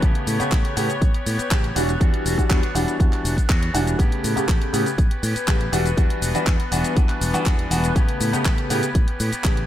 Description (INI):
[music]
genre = filtered disco house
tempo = 121 BPM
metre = 4/4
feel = straight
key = A mixolydian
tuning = A4 = 441 Hz
[part]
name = bright baby grand piano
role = accompaniment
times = 0.0-9.6 s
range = C#3 to G4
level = -25 LUFS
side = equal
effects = phaser, sidechain pumping, low-pass filter
[part]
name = warm chamber string section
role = sustained chords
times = 0.0-9.7 s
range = B3 to C#5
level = -30 LUFS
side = left 4 dB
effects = sidechain pumping, low-pass filter
[part]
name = electric guitar with an envelope filter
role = riff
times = 0.0-9.7 s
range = E3 to G4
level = -30 LUFS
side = right 2 dB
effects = sidechain pumping, low-pass filter
[part]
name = fingered electric bass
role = bass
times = 0.0-9.6 s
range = E1 to A2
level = -25 LUFS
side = equal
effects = sidechain pumping, low-pass filter
[part]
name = electronic kick drum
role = drums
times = 0.0-9.5 s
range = none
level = -19 LUFS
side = equal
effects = none
[part]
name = house drum kit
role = drums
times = 0.0-9.7 s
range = cabasa, handclaps, hi-hat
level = -28 LUFS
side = left 1 dB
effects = sidechain pumping on hats, sidechain pumping on perc
[sound]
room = little or no reverb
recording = none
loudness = -18 LUFS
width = side -12 dB against mid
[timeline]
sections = 0.0-9.7 A section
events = none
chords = 0.0 A9; 1.8 Em9; 4.0 A9; 5.7 Em9; 8.0 A9